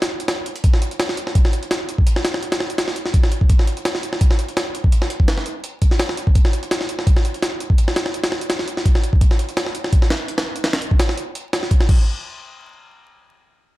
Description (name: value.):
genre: drum and bass.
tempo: 168 BPM.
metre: 4/4.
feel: swing 54% on 16ths.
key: none.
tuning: none.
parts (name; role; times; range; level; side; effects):
jungle sampler-style drum kit; drums; 0.0-12.0 s; crash cymbal, hi-hat, kick drum, snare drum; -16 LUFS; equal; none.
room: little or no reverb.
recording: vinyl crackle.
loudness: -16 LUFS.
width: side -17 dB against mid.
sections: 0.6-12.1 A section; 12.1-13.5 B section.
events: none.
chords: none.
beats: 0.28 | 0.64 1.00 1.35 1.71 | 2.07 2.42 2.78 3.14 | 3.50 3.85 4.21 4.57 | 4.92 5.28 5.64 6.00 | 6.35 6.71 7.07 7.42 | 7.78 8.14 8.50 8.85 | 9.21 9.57 9.93 10.28 | 10.64 11.00 11.35 11.71.